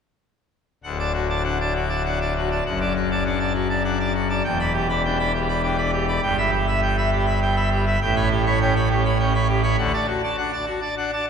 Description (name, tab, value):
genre	classical, organ toccata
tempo	101 BPM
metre	3/4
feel	straight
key	D major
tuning	A4 = 440 Hz
part	pipe organ, full organ	solo	0.8-11.3 s	D1 to B5	-19 LUFS	equal	none
room	wet church reverb, RT60 3.4 s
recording	minimal, uncompressed stereo recording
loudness	-19 LUFS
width	side -6 dB against mid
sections	0.8-11.3 A section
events	none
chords	0.8 D; 2.6 D/F#; 4.4 Em7; 6.2 Em/G; 8.0 A9; 9.8 D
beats	| 0.84 1.45 2.05 | 2.65 3.25 3.85 | 4.45 5.04 5.64 | 6.23 6.83 7.42 | 8.01 8.61 9.20 | 9.79 10.38 10.98